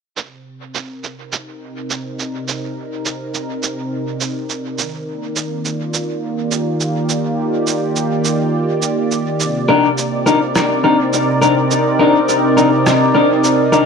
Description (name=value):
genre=ambient dub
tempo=104 BPM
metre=4/4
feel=straight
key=C minor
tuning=A4 = 440 Hz
part: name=warm analog pad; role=sustained chords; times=0.2-13.9 s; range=C3 to D5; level=-17 LUFS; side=right 1 dB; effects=chorus
part: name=electronic shaker and rim click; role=drums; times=0.2-13.8 s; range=none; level=-22 LUFS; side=right 4 dB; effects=overdrive, low-pass filter on perc, low-pass filter on snare, dub echo
part: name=electric guitar at the edge of break-up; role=stabs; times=9.7-13.8 s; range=D4 to Bb4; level=-14 LUFS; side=left 3 dB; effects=dub echo
room=moderate lush hall reverb, RT60 2.7 s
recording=dark, warm production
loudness=-14 LUFS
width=side -5 dB against mid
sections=0.2-13.9 A section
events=fade-in on analog synth pad 0.2-13.9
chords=0.2 Cm9; 4.8 Ebmaj7; 9.4 Cm9